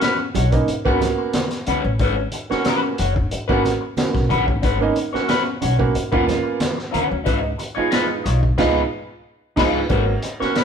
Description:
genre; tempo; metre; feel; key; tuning
funk; 91 BPM; 4/4; straight; G# dorian; A4 = 441 Hz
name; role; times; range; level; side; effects
electric guitar at the edge of break-up; accompaniment; 0.0-10.6 s; C#4 to C#5; -23 LUFS; left 4 dB; wah
dark upright piano; stabs; 0.0-10.6 s; G#3 to F#4; -22 LUFS; right 5 dB; none
crunchy breakbeat drum kit; drums; 0.0-10.6 s; crash cymbal, hi-hat, kick drum, snare drum; -23 LUFS; equal; none
congas; percussion; 0.0-10.6 s; none; -31 LUFS; right 3 dB; none
upright bass; bass; 0.4-10.4 s; F#1 to D#2; -22 LUFS; equal; none
room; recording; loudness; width
moderate stone room reverb, RT60 1.1 s; band playing live in one room; -17 LUFS; side -7 dB against mid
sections
0.0-9.9 A section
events
band accent 8.6-9.9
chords
0.0 G#m11 (rootless); 7.3 C#9; 9.9 G#m11

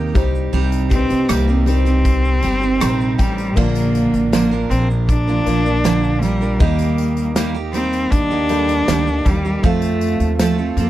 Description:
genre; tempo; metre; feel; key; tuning
acoustic pop; 79 BPM; 4/4; straight; Bb major; A4 = 440 Hz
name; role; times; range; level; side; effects
rich cello; melody; 0.0-10.9 s; G3 to D4; -20 LUFS; left 2 dB; none
dark upright piano; accompaniment; 0.0-10.9 s; G3 to C6; -28 LUFS; left 6 dB; none
picked steel-string acoustic guitar; accompaniment; 0.0-10.9 s; Bb2 to Bb4; -21 LUFS; right 6 dB; none
upright bass; bass; 0.0-10.9 s; G1 to F2; -20 LUFS; equal; none
modern studio drum kit; drums; 0.2-10.9 s; crash cymbal, kick drum, rim click, shaker, snare drum; -19 LUFS; equal; none
tambourine; percussion; 0.2-10.9 s; none; -36 LUFS; left 16 dB; none
room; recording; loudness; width
little or no reverb; none; -14 LUFS; side -14 dB against mid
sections
0.0-3.6 A section; 3.6-10.9 B section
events
upright piano fill 2.4-3.6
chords
0.2 Cm; 3.6 Bb; 6.6 Eb; 9.6 F

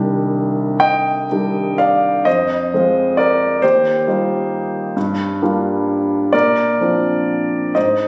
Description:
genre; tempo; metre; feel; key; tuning
classical, impressionist solo piano; 40-46 BPM (dotted quarters); 6/8; rubato; C minor; A4 = 440 Hz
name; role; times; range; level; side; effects
warm concert grand piano; solo; 0.0-8.1 s; C2 to G5; -17 LUFS; equal; none
room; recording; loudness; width
wet recital hall reverb, RT60 1.4 s; recorded on a phone in the room, studio reverb, compression; -17 LUFS; mono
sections
0.0-8.1 A section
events
none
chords
0.0 Cmadd9; 2.3 Fm7; 3.6 Eb69; 5.0 Gm7; 6.3 Bbadd9

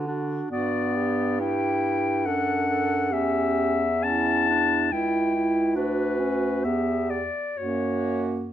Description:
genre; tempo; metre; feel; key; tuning
classical, lyrical piece for single-reed quartet; 60-72 BPM; 3/4; rubato; unclear; A4 = 440 Hz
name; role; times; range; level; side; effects
warm clarinet; melody; 0.0-8.2 s; B4 to A5; -26 LUFS; left 5 dB; none
clear alto saxophone; second line; 0.0-8.5 s; E4 to A4; -29 LUFS; right 7 dB; none
clear clarinet; accompaniment; 0.0-8.5 s; A#3 to E4; -29 LUFS; left 1 dB; none
clear bass clarinet; bass; 0.0-8.5 s; C#2 to D3; -29 LUFS; right 2 dB; none
room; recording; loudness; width
moderate recital hall reverb, RT60 1.4 s; close, detailed microphones; -22 LUFS; side -11 dB against mid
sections
0.0-8.5 A section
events
none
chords
0.0 Bm/D (rootless); 0.5 Gmaj7; 3.1 C#dim/E; 5.8 Bm/D; 6.7 Em7; 7.6 F#

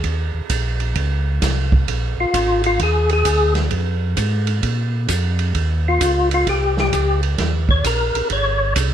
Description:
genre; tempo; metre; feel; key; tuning
soul jazz organ trio; 131 BPM; 4/4; swing 66% on 8ths; unclear; A4 = 444 Hz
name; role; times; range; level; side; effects
mellow tonewheel organ; bass; 0.0-8.9 s; G1 to Bb2; -20 LUFS; equal; chorus vibrato, slow rotary speaker
open jazz drum kit; drums; 0.0-8.9 s; hi-hat, kick drum, ride cymbal, snare drum; -22 LUFS; right 3 dB; none
percussive tonewheel organ; melody; 2.2-8.7 s; F4 to Db5; -19 LUFS; left 2 dB; slow rotary speaker, chorus vibrato, plate reverb
room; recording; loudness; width
light reverb; none; -16 LUFS; side -10 dB against mid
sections
0.0-8.9 A section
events
tonewheel organ solo 0.0-8.9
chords
0.0 Eb5; 1.9 Bb7; 3.7 Fm; 4.6 Bb5; 5.5 Eb7

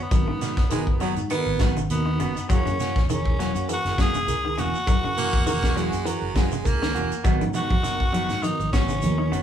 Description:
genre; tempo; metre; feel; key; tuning
afrobeat; 101 BPM; 4/4; swing 54% on 16ths; G# minor; A4 = 440 Hz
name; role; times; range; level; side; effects
growling tenor saxophone; melody; 0.0-9.4 s; B3 to G#4; -28 LUFS; left 1 dB; none
mellow reed electric piano; accompaniment; 0.1-9.3 s; B3 to A#4; -34 LUFS; right 4 dB; fast tremolo
semi-hollow electric guitar; arpeggios; 0.1-9.4 s; C#3 to F#3; -31 LUFS; left 6 dB; none
fingered electric bass; bass; 0.1-9.4 s; E1 to G#2; -27 LUFS; equal; none
tight funk drum kit; drums; 0.1-9.4 s; hi-hat, kick drum, snare drum; -25 LUFS; equal; none
shekere; percussion; 0.1-9.4 s; none; -36 LUFS; right 8 dB; none
semi-hollow electric guitar; stabs; 0.4-9.4 s; D#3 to F#4; -31 LUFS; right 3 dB; none
raspy baritone saxophone; second line; 0.7-7.4 s; F#3 to B3; -28 LUFS; right 5 dB; none
congas; percussion; 7.2-9.2 s; none; -30 LUFS; right 3 dB; none
room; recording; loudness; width
moderate small room reverb, RT60 0.5 s; band playing live in one room, studio ambience; -21 LUFS; side -9 dB against mid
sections
0.0-9.4 A section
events
none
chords
0.0 G#m7; 2.5 F#7; 7.2 G#m7

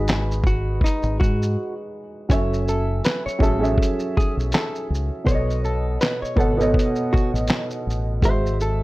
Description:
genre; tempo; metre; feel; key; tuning
lo-fi hip hop; 81 BPM; 4/4; swing 56% on 16ths; F# dorian; A4 = 440 Hz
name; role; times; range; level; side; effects
hollow-body jazz guitar; melody; 0.0-8.8 s; D#4 to C#5; -27 LUFS; equal; low-pass filter
dark upright piano; accompaniment; 0.0-8.8 s; B2 to B5; -25 LUFS; right 2 dB; low-pass filter
deep dub fingered electric bass; bass; 0.0-8.8 s; F#1 to G#2; -23 LUFS; equal; none
lo-fi sampler-style drum kit; drums; 0.1-8.8 s; handclaps, hi-hat, kick drum, shaker, snare drum; -21 LUFS; equal; none
room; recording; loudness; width
light reverb; dark, warm production; -19 LUFS; side -19 dB against mid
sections
0.0-2.3 A section; 2.3-8.8 B section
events
break 1.6-2.3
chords
0.0 G#m7; 2.3 F#m7; 5.3 B9; 8.2 G#7b13

